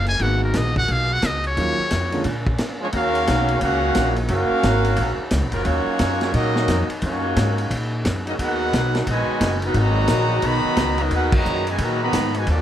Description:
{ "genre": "jazz, big band swing", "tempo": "176 BPM", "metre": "4/4", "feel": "swing 63% on 8ths", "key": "Eb minor", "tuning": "A4 = 440 Hz", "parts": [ { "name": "trumpet with metal mute", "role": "melody", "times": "0.0-2.2 s", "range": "Bb4 to Ab5", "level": "-23 LUFS", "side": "equal", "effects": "none" }, { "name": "bright saxophone section", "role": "sustained chords", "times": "0.0-12.6 s", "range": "Bb2 to Cb5", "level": "-32 LUFS", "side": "left 1 dB", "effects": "none" }, { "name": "upright bass", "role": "bass", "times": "0.0-12.6 s", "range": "Gb1 to Bb2", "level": "-23 LUFS", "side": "equal", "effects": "none" }, { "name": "vintage drum kit", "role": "drums", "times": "0.1-12.6 s", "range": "crash cymbal, hi-hat, kick drum, ride cymbal, snare drum", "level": "-25 LUFS", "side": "equal", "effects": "none" }, { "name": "warm concert grand piano", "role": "accompaniment", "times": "0.2-2.2 s", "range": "D3 to Gb4", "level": "-26 LUFS", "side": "right 1 dB", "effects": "none" }, { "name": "clear trumpet section", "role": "melody", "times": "2.8-12.6 s", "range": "Gb3 to Cb6", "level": "-23 LUFS", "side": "left 1 dB", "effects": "none" }, { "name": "bright trombone section", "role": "second line", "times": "2.8-12.6 s", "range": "Bb2 to Gb4", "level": "-25 LUFS", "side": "right 3 dB", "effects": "none" } ], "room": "light reverb", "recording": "none", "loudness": "-18 LUFS", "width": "side -10 dB against mid", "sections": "0.0-2.9 A section; 2.9-12.6 B section", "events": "muted trumpet solo 0.0-2.9; break 2.6-2.9; band accent 11.3", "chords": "0.2 Abm9; 1.6 Ebm9; 2.2 Bb7#9; 2.9 Ebm9; 8.4 Abm9" }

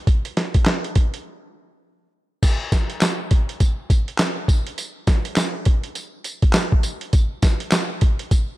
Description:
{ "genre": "R&B", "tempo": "102 BPM", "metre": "4/4", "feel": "swing 61% on 16ths", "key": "none", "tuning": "none", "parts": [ { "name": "boom bap sampler-style drum kit", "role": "drums", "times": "0.1-8.5 s", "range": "crash cymbal, handclaps, hi-hat, kick drum, snare drum, tambourine", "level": "-18 LUFS", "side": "equal", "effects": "none" } ], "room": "digital ambience", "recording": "none", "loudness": "-18 LUFS", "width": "side -17 dB against mid", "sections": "0.0-2.4 A section; 2.4-8.6 B section", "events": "break 1.3-2.4", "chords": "none" }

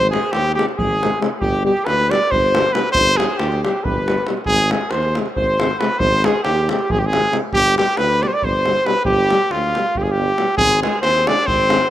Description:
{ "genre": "balkan folk, Balkan brass band", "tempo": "275 BPM (eighths)", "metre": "7/8", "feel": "straight", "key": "G phrygian dominant", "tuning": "A4 = 441 Hz", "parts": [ { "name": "clear trumpet", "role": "melody", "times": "0.0-11.9 s", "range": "F4 to D5", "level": "-17 LUFS", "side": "equal", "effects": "none" }, { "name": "clear alto saxophone", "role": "second line", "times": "0.0-11.9 s", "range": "Ab3 to D5", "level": "-24 LUFS", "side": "right 2 dB", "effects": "none" }, { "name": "mellow tuba", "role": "bass", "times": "0.0-11.8 s", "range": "G1 to Eb2", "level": "-22 LUFS", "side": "equal", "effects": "none" }, { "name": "davul", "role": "percussion", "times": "0.0-11.9 s", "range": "none", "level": "-24 LUFS", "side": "equal", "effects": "none" }, { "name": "mellow euphonium", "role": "accompaniment", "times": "0.1-11.8 s", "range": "G3 to Ab3", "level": "-25 LUFS", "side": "left 4 dB", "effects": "none" }, { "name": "mellow euphonium", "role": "accompaniment", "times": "0.1-11.8 s", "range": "B2 to C3", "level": "-31 LUFS", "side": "right 5 dB", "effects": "none" } ], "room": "moderate plate reverb, RT60 3.1 s", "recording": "rough home demo mix", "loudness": "-15 LUFS", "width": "side -12 dB against mid", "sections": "0.0-10.6 A section; 10.6-11.9 A section", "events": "none", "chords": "0.0 Ab; 1.4 G; 4.5 Ab; 7.5 G; 10.6 Ab" }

